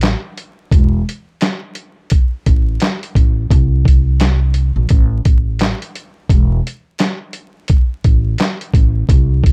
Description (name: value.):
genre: hip hop, boom-bap hip-hop.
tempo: 86 BPM.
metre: 4/4.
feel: swing 58% on 16ths.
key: unclear.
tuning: A4 = 440 Hz.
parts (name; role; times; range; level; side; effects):
upright bass; bass; 0.0-9.5 s; E1 to B#1; -17 LUFS; equal; none.
dusty soul sampler-style drum kit; drums; 0.0-9.5 s; handclaps, hi-hat, kick drum, snare drum; -15 LUFS; equal; vintage 12-bit sampler grit.
room: little or no reverb.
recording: dark, warm production, vinyl crackle.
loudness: -15 LUFS.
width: mono.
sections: 0.0-9.5 A section.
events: break 0.0-0.7.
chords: none.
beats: 0.02 | 0.71 1.41 2.11 2.81 | 3.51 4.20 4.90 5.60 | 6.30 6.99 7.69 8.39 | 9.09.